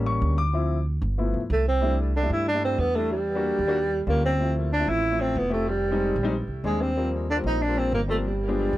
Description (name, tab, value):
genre	Afro-Cuban jazz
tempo	187 BPM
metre	4/4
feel	straight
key	C major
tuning	A4 = 442 Hz
part	clear grand piano	accompaniment	0.0-8.7 s	F3 to D6	-29 LUFS	left 4 dB	none
part	upright bass	bass	0.0-8.8 s	F1 to G2	-26 LUFS	right 1 dB	none
part	breathy tenor saxophone	melody	1.5-8.8 s	G3 to E4	-25 LUFS	right 1 dB	tape echo
room	light reverb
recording	dry, close 1970s-style studio recording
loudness	-22 LUFS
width	side -15 dB against mid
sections	0.0-1.8 A section; 1.8-8.8 B section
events	grand piano solo 0.0-1.8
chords	0.0 A7b9; 0.5 Dm7; 1.2 G13; 1.8 C69; 3.1 Em7b5; 3.8 Eb9; 4.4 Dm9; 5.7 Fm7; 6.3 Bb13; 7.0 Eb69; 8.2 G7b9